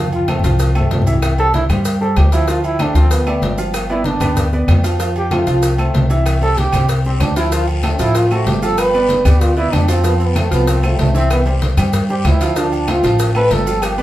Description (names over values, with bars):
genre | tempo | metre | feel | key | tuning
latin, salsa | 190 BPM | 4/4 | straight | C major | A4 = 441 Hz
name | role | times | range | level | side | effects
clear concert grand piano | accompaniment | 0.0-14.0 s | E3 to F5 | -21 LUFS | right 1 dB | none
upright bass | bass | 0.0-14.0 s | G1 to G2 | -16 LUFS | equal | none
bright trombone | melody | 0.1-14.0 s | F3 to B4 | -18 LUFS | right 1 dB | none
agogo bells and timbales | percussion | 0.1-14.0 s | none | -26 LUFS | right 1 dB | none
congas | percussion | 0.1-14.0 s | none | -23 LUFS | equal | none
maracas | percussion | 0.1-14.0 s | none | -34 LUFS | right 4 dB | none
claves | percussion | 0.3-14.0 s | none | -33 LUFS | equal | none
cowbell | percussion | 0.3-14.0 s | none | -27 LUFS | left 3 dB | none
guiro | percussion | 6.3-14.0 s | none | -34 LUFS | left 3 dB | none
room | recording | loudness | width
wet studio reverb, RT60 0.6 s | heard from further back in the room | -13 LUFS | side -14 dB against mid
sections
0.0-14.0 A section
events
drum fill 0.0-1.2; trombone solo 0.0-14.0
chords
0.0 F; 1.2 C; 2.5 Dm; 3.7 G7; 5.0 F; 6.3 C; 7.5 Dm7; 8.8 G7; 10.0 F; 11.3 C; 12.6 Dm7